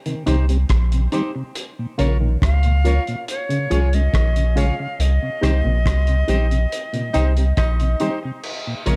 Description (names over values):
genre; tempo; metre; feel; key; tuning
roots reggae; 70 BPM; 4/4; straight; unclear; A4 = 445 Hz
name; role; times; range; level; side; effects
mellow tonewheel organ; accompaniment; 0.1-9.0 s; Bb2 to Db4; -30 LUFS; equal; chorus vibrato, slow rotary speaker
muted clav; arpeggios; 0.1-9.0 s; Bb2 to F3; -29 LUFS; equal; none
cloth-damped thuddy drum kit; drums; 0.1-9.0 s; crash cymbal, hi-hat, kick drum, rim click; -27 LUFS; equal; none
semi-hollow electric guitar; accompaniment; 0.3-9.0 s; Eb4 to Db5; -34 LUFS; equal; subtle chorus, dub echo
filtered dub chord stab; stabs; 0.3-9.0 s; Eb4 to Db5; -30 LUFS; equal; phaser
warm sub bass; bass; 0.3-9.0 s; Bb1 to Db2; -20 LUFS; equal; none
silver concert flute; melody; 2.4-8.0 s; Db5 to F5; -30 LUFS; equal; dub echo
warm tenor saxophone; second line; 7.1-8.2 s; Eb4; -30 LUFS; equal; dub echo
room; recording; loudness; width
light reverb, small room reverb; dark, warm production; -19 LUFS; mono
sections
0.0-8.4 A section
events
band accent 5.0-8.4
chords
0.0 Cm; 1.6 Bbm; 3.3 Db; 5.0 Cm; 8.4 Bbm